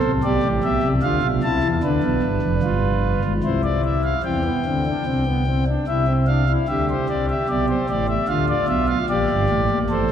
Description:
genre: classical, baroque-style 3-part fugue for pipe organ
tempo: 75 BPM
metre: 3/4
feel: straight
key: unclear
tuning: A4 = 442 Hz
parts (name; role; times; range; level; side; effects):
- pipe organ, principal; solo; 0.0-10.1 s; F1 to A5; -18 LUFS; equal; none
room: wet church reverb, RT60 3.9 s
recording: none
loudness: -18 LUFS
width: side -9 dB against mid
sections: 0.0-4.3 A section; 4.3-10.1 B section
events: none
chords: 0.0 C; 1.0 Dm7; 1.8 Bdim7; 3.4 C; 5.9 Cadd11; 6.7 D5; 8.3 Bdim/D; 9.1 Gm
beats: 0.22 1.02 | 1.82 2.62 3.44 | 4.25 5.07 5.88 | 6.68 7.49 8.29 | 9.10 9.90

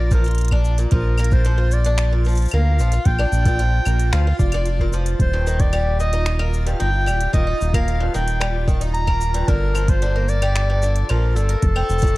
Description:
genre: folktronica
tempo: 112 BPM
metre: 4/4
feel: straight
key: Bb major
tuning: A4 = 439 Hz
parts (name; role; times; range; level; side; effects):
- bright clarinet; melody; 0.0-12.2 s; A4 to Bb5; -25 LUFS; left 1 dB; digital delay
- picked twelve-string acoustic guitar; arpeggios; 0.0-12.2 s; G2 to F4; -28 LUFS; left 2 dB; digital delay
- round analog bass; bass; 0.0-12.2 s; Eb1 to D2; -18 LUFS; equal; none
- backwards swelling texture; texture; 0.0-12.2 s; F4 to A6; -33 LUFS; right 1 dB; built-in reverb
- electronic kick drum; drums; 0.1-12.1 s; none; -19 LUFS; equal; overdrive
- organic electronic drum kit; drums; 0.1-12.2 s; cabasa, claves, finger snaps, hi-hat; -30 LUFS; equal; overdrive
room: little or no reverb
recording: dark, warm production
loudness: -16 LUFS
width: side -19 dB against mid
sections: 0.0-12.2 A section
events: none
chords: 0.0 Bb; 5.2 Eb; 9.5 Gm7; 11.6 F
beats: 0.38 | 0.92 1.45 1.99 2.52 | 3.06 3.59 4.13 4.67 | 5.20 5.74 6.27 6.81 | 7.34 7.88 8.41 8.95 | 9.49 10.02 10.56 11.09 | 11.63 12.16

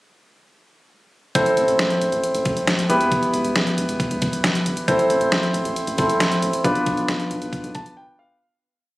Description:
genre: synth-pop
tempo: 136 BPM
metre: 4/4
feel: straight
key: A minor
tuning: A4 = 441 Hz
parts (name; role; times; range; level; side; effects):
- warm concert grand piano; accompaniment; 1.4-8.4 s; B3 to A5; -20 LUFS; equal; none
- round analog bass; bass; 1.4-7.8 s; E1 to B1; -29 LUFS; equal; none
- detuned 8-bit digital drum machine; drums; 1.4-8.0 s; hi-hat, kick drum, snare drum; -23 LUFS; equal; overdrive
room: moderate plate reverb, RT60 1.4 s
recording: recorded on a phone in the room, club reverb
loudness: -18 LUFS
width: side -19 dB against mid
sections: 1.4-8.4 verse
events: fade-out 6.6-8.4; grand piano fill 7.5-8.4; break 8.0-8.4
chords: 1.4 Am; 2.9 Em; 4.9 Am; 6.6 Bdim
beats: | 1.35 1.79 2.23 2.67 | 3.12 3.56 4.00 4.44 | 4.88 5.32 5.76 6.20 | 6.65 7.09 7.53 7.97

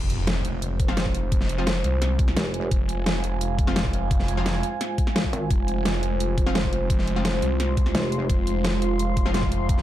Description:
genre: dark technical drum and bass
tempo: 172 BPM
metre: 4/4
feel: straight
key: F minor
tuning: A4 = 440 Hz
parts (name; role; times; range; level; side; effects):
- dark analog pad; sustained chords; 0.2-9.8 s; Ab3 to F5; -30 LUFS; right 1 dB; chorus, sidechain pumping
- phased detuned saw bass; bass; 0.0-9.8 s; F1 to C2; -26 LUFS; equal; phaser, overdrive, sidechain pumping
- impact; sound effects; 0.0-1.3 s; none; -32 LUFS; equal; none
- deep dark ambient pad; texture; 1.6-9.8 s; F4 to C6; -32 LUFS; right 3 dB; chorus, built-in reverb, sidechain pumping
- dubstep drum kit; drums; 0.1-9.8 s; hi-hat, snare drum; -28 LUFS; equal; overdrive
- electronic kick drum; drums; 0.8-9.8 s; none; -23 LUFS; equal; overdrive
- orchestra-hit-like synth stab; stabs; 0.9-9.8 s; F3 to F4; -33 LUFS; left 2 dB; built-in reverb, digital delay
- pulsing pluck wobble bass; bass; 2.4-2.7, 5.3-5.5, 7.9-8.3 s; F1 to Ab1; -26 LUFS; equal; chorus
room: light reverb, digital ambience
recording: dark, warm production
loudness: -21 LUFS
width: side -13 dB against mid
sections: 0.0-9.8 A section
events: impact 0.0-1.3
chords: 0.0 Fm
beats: 0.27 0.62 0.97 | 1.32 1.67 2.02 2.37 | 2.71 3.06 3.41 3.76 | 4.11 4.46 4.81 5.16 | 5.50 5.85 6.20 6.55 | 6.90 7.25 7.60 7.95 | 8.30 8.64 8.99 9.34 | 9.69

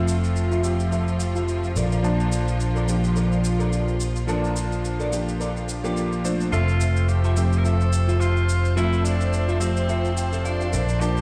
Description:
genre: nu-disco, nu disco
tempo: 107 BPM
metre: 4/4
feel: swing 56% on 16ths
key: F major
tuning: A4 = 443 Hz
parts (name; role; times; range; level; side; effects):
- clear electric grand piano; accompaniment; 0.0-11.2 s; F3 to A5; -30 LUFS; equal; digital delay
- clear symphonic string section; sustained chords; 0.0-11.2 s; F3 to A5; -33 LUFS; equal; none
- semi-hollow electric guitar; riff; 0.0-11.2 s; F4 to G5; -34 LUFS; equal; ensemble chorus, low-pass filter, digital delay
- picked electric bass; bass; 0.0-11.2 s; F1 to Bb1; -25 LUFS; equal; none
- shaker; drums; 0.1-11.2 s; none; -39 LUFS; equal; none
- clear tenor saxophone; melody; 6.5-11.2 s; C4 to Bb4; -31 LUFS; equal; dub echo
room: light reverb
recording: played on a big sound system in a bare room, large studio reverb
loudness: -23 LUFS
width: mono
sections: 0.0-11.2 A section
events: filter sweep on clean electric guitar 0.0-11.2; clean electric guitar fill 9.9-11.0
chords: 0.0 Fmaj7; 1.8 Bbmaj7; 6.5 Fmaj7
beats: 0.36 0.92 1.48 | 2.04 2.60 3.16 3.72 | 4.29 4.84 5.41 5.97 | 6.53 7.09 7.65 8.21 | 8.77 9.33 9.89 10.45 | 11.01

